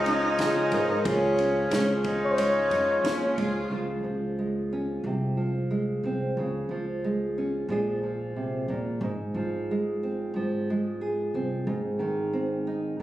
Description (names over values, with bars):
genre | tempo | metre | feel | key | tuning
acoustic folk-pop ballad | 90 BPM | 4/4 | straight | Db major | A4 = 440 Hz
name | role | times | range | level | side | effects
breathy flugelhorn | melody | 0.0-3.4 s | Ab4 to Db5 | -27 LUFS | left 2 dB | none
clear cello | second line | 0.0-3.7 s | Db4 to F4 | -28 LUFS | equal | none
nylon-string guitar | accompaniment | 0.0-13.0 s | Ab2 to Ab4 | -28 LUFS | right 1 dB | none
hand-pumped harmonium | sustained chords | 0.0-3.7 s | F3 to Db4 | -30 LUFS | right 1 dB | none
upright bass | bass | 0.0-13.0 s | Ab1 to Db3 | -34 LUFS | equal | none
compact cocktail drum kit | drums | 0.1-3.5 s | kick drum, ride cymbal, snare drum | -35 LUFS | equal | none
room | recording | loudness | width
moderate large studio reverb, RT60 1.1 s | recorded on a phone in the room, studio reverb | -25 LUFS | side -14 dB against mid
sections
0.0-3.7 A section; 3.7-13.0 B section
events
none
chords
0.0 Db; 5.0 Fm/C; 6.4 Db; 7.7 Bb5; 9.0 Fm/Ab; 11.7 Ab